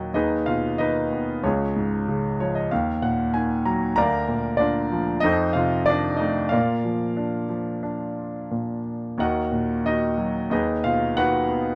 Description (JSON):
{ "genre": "classical, lyrical solo piano", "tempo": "92 BPM", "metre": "4/4", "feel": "rubato", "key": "Eb minor", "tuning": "A4 = 440 Hz", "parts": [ { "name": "clear grand piano", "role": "solo", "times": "0.0-11.8 s", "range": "Db2 to Bb5", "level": "-24 LUFS", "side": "equal", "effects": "none" } ], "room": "light reverb", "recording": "dark, warm production", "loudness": "-24 LUFS", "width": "mono", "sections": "0.0-11.8 A section", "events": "grand piano fill 2.1-4.0", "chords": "0.1 Abm/Eb; 1.4 Db; 2.7 Ebm; 4.0 Bb/D; 5.2 F7; 6.5 Bb; 9.2 Ebm; 10.5 Abm/Eb" }